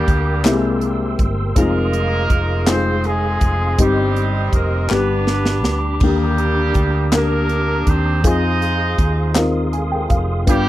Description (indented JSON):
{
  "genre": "slow gospel",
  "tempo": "54 BPM (dotted quarters)",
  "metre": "6/8",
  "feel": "straight",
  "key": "unclear",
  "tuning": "A4 = 439 Hz",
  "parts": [
    { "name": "clear horn section", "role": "melody", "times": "0.0-10.7 s", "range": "G3 to Eb5", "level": "-22 LUFS", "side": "right 1 dB", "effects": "none" },
    { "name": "dark upright piano", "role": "accompaniment", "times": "0.0-10.7 s", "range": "G2 to Ab5", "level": "-21 LUFS", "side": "left 3 dB", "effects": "none" },
    { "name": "mellow tonewheel organ", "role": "sustained chords", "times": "0.0-10.7 s", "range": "D4 to E6", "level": "-27 LUFS", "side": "right 3 dB", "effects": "fast rotary speaker, chorus vibrato" },
    { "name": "hollow-body short-scale fingered electric bass", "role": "bass", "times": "0.0-10.7 s", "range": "F1 to F2", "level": "-20 LUFS", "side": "equal", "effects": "none" },
    { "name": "crisp fusion drum kit", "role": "drums", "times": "0.1-10.6 s", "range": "crash cymbal, hi-hat, kick drum, snare drum", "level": "-18 LUFS", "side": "right 1 dB", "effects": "none" },
    { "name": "group handclap", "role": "percussion", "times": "0.4-9.7 s", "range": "none", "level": "-22 LUFS", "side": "left 6 dB", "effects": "none" }
  ],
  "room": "little or no reverb",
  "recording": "dry, close 1970s-style studio recording",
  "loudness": "-15 LUFS",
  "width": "side -14 dB against mid",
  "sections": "0.0-10.7 A section",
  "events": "drum fill 4.9-6.0; upright piano fill 9.4-10.5",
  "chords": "0.4 C7b13; 1.6 Fm7; 3.8 Cm/G; 4.9 G; 6.0 Ebmaj7; 8.2 Fm7"
}